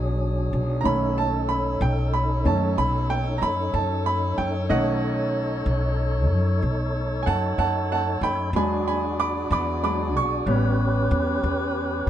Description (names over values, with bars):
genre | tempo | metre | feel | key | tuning
slow blues | 62 BPM (dotted quarters) | 12/8 | straight | unclear | A4 = 440 Hz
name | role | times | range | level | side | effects
clear upright piano | accompaniment | 0.0-12.1 s | D#3 to D6 | -25 LUFS | right 2 dB | none
mellow horn section | sustained chords | 0.0-12.1 s | F#3 to D5 | -32 LUFS | equal | none
tonewheel organ | sustained chords | 0.0-12.1 s | F#3 to C#5 | -30 LUFS | left 1 dB | slow rotary speaker
upright bass | bass | 0.0-12.1 s | A1 to F#2 | -25 LUFS | equal | none
room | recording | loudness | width
light reverb | dark, warm production, nothing above 11.0 kHz | -21 LUFS | side -11 dB against mid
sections
0.0-12.1 A section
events
upright piano solo 0.0-12.1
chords
0.0 E9 (rootless); 0.9 B9; 8.5 E9; 10.5 A9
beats
| 0.85 1.82 2.78 3.74 | 4.70 5.66 6.62 7.58 | 8.55 9.51 10.47 11.43